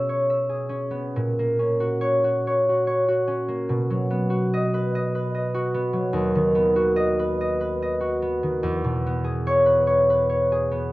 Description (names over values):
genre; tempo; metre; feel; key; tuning
classical, solo harp piece; 48 BPM (dotted quarters); 6/8; uneven beats, rubato; B major; A4 = 441 Hz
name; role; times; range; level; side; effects
concert harp; solo; 0.0-10.9 s; D#2 to E5; -20 LUFS; equal; none
room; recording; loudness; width
little or no reverb; worn, warbling old tape, cassette tape, warbly pitch drift; -20 LUFS; side -18 dB against mid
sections
0.0-10.9 A section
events
none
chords
0.0 C#m7/B; 1.1 F#/A#; 3.7 B; 6.2 B/D#; 8.6 C#m7/E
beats
| 1.14 2.45 | 3.71 4.94 | 6.17 7.40 | 8.64 9.88